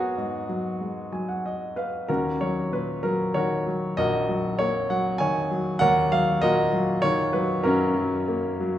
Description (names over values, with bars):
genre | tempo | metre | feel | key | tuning
classical, lyrical solo piano | 96 BPM | 3/4 | rubato | unclear | A4 = 440 Hz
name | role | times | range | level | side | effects
clear grand piano | solo | 0.0-8.8 s | A#1 to G#5 | -22 LUFS | equal | none
room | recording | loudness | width
wet recital hall reverb, RT60 1.8 s | recorded in a church or concert hall | -22 LUFS | side -12 dB against mid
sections
0.0-2.1 A section; 2.1-8.8 B section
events
grand piano fill 0.8-2.1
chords
0.0 G#m11; 2.1 D#m7